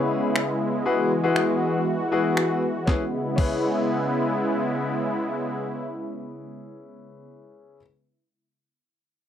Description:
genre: dance-pop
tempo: 119 BPM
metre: 4/4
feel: straight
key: C# minor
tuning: A4 = 440 Hz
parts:
  - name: clear concert grand piano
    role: accompaniment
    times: 0.0-7.8 s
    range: C#4 to B4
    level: -27 LUFS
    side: left 4 dB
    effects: sidechain pumping
  - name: sweeping resonant pad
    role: sustained chords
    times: 0.0-7.3 s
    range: C#3 to F#4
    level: -25 LUFS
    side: equal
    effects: chorus, sidechain pumping
  - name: clean 12-bit digital drum machine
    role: drums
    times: 0.4-3.5 s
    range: crash cymbal, finger snaps, kick drum, snare drum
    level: -25 LUFS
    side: equal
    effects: overdrive
room: moderate studio reverb, RT60 0.6 s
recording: rough home demo mix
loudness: -22 LUFS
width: side -9 dB against mid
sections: 0.0-2.9 A section; 2.9-6.9 B section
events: none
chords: 0.0 C#m7; 0.9 Eadd9; 2.9 C#m7

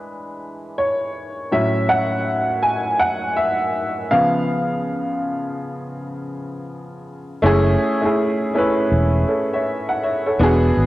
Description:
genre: lo-fi hip hop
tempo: 81 BPM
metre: 4/4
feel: swing 60% on 16ths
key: F# minor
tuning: A4 = 440 Hz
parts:
  - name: warm upright piano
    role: accompaniment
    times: 0.0-10.9 s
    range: A2 to G#5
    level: -18 LUFS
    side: equal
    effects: low-pass filter
  - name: vintage muted fingered electric bass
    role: bass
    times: 7.4-10.9 s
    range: E1 to G#1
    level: -17 LUFS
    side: equal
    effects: none
room: moderate spring reverb, RT60 2.3 s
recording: none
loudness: -17 LUFS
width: side -16 dB against mid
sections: 0.0-7.4 A section; 7.4-10.9 B section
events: upright piano solo 0.0-7.4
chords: 0.0 E7; 1.5 A6; 4.1 C#7; 7.4 F#m9

